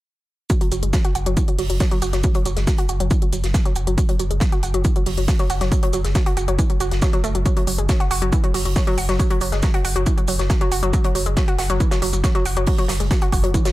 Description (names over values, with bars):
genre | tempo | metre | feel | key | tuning
driving peak-time techno | 138 BPM | 4/4 | straight | unclear | A4 = 440 Hz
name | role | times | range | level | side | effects
analog pluck | riff | 0.5-13.7 s | E3 to F#4 | -24 LUFS | equal | chorus, sidechain pumping, tape echo
electronic hi-hat | drums | 0.5-13.7 s | none | -30 LUFS | equal | overdrive, sidechain pumping on hats
electronic kick drum | drums | 0.5-13.6 s | none | -19 LUFS | equal | overdrive
modern studio drum kit | drums | 0.5-13.7 s | hi-hat, shaker, snare drum | -32 LUFS | right 2 dB | high-pass filter on hats, high-pass filter on snare, high-pass filter on perc, high-pass filter on room
saturated sub bass | bass | 0.7-13.5 s | F#1 | -23 LUFS | equal | tube saturation, sidechain pumping, low-pass filter
room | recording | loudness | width
small room ambience | none | -17 LUFS | side -17 dB against mid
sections
0.5-13.7 A section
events
none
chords
none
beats
| 0.50 0.93 1.37 1.80 | 2.24 2.67 3.11 3.54 | 3.98 4.41 4.85 5.28 | 5.72 6.15 6.59 7.02 | 7.46 7.89 8.32 8.76 | 9.20 9.63 10.06 10.50 | 10.93 11.37 11.80 12.24 | 12.67 13.11 13.54